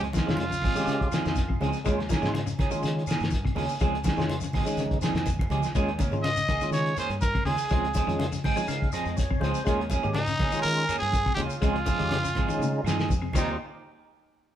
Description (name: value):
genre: afrobeat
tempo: 123 BPM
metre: 4/4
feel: straight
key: unclear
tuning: A4 = 441 Hz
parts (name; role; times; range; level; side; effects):
- tonewheel organ; accompaniment; 0.0-13.6 s; G3 to Ab5; -33 LUFS; equal; slow rotary speaker, overdrive
- clean electric guitar; arpeggios; 0.0-13.5 s; C3 to Ab3; -33 LUFS; left 5 dB; none
- clean electric guitar; stabs; 0.0-13.5 s; Eb3 to Ab4; -32 LUFS; right 5 dB; spring reverb
- deep dub fingered electric bass; bass; 0.0-13.6 s; Ab1 to Eb3; -33 LUFS; equal; none
- cloth-damped thuddy drum kit; drums; 0.0-13.5 s; crash cymbal, hi-hat, kick drum, snare drum, toms; -29 LUFS; equal; none
- congas; percussion; 0.0-13.5 s; none; -37 LUFS; right 1 dB; none
- growling trumpet; melody; 0.1-1.6, 6.2-13.6 s; Eb4 to Eb5; -29 LUFS; right 1 dB; none
- shekere; percussion; 0.1-13.5 s; none; -40 LUFS; left 4 dB; none
- claves; percussion; 0.4-13.5 s; none; -49 LUFS; left 4 dB; none
room: moderate stone room reverb, RT60 1.1 s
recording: band playing live in one room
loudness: -24 LUFS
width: side -11 dB against mid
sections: 0.0-13.6 A section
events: drum fill 4.8-5.8, 12.6-13.6; tonewheel organ fill 8.2-9.7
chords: 0.0 Dbmaj7; 1.9 Eb7sus4; 3.8 Dbmaj7; 5.8 Eb7sus4; 7.7 Dbmaj7; 9.7 Eb7sus4; 11.6 Dbmaj7; 13.3 Eb; 13.6 N.C.